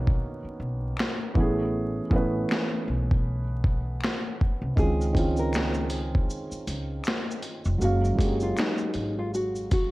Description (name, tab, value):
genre	lo-fi hip hop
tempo	79 BPM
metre	4/4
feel	swing 58% on 16ths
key	unclear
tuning	A4 = 440 Hz
part	felt-muted upright piano	accompaniment	0.0-9.9 s	Eb3 to F5	-30 LUFS	right 1 dB	cassette tape, low-pass filter
part	upright bass	bass	0.0-9.9 s	F1 to Db2	-29 LUFS	equal	transformer saturation
part	boom bap sampler-style drum kit	drums	0.1-9.9 s	finger snaps, hi-hat, kick drum, shaker, snare drum	-26 LUFS	equal	none
part	finger snap	percussion	1.0-8.8 s	none	-42 LUFS	left 5 dB	none
part	nylon-string guitar	melody	4.8-9.9 s	Eb4 to Bb4	-31 LUFS	equal	low-pass filter, tape echo
room	light reverb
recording	worn, warbling old tape, cassette tape, vinyl crackle, warbly pitch drift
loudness	-24 LUFS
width	side -19 dB against mid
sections	0.0-9.9 A section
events	break 0.0-4.8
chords	0.0 Cbmaj9; 1.4 Amaj9; 4.8 Dbmaj9; 7.8 Gbmaj9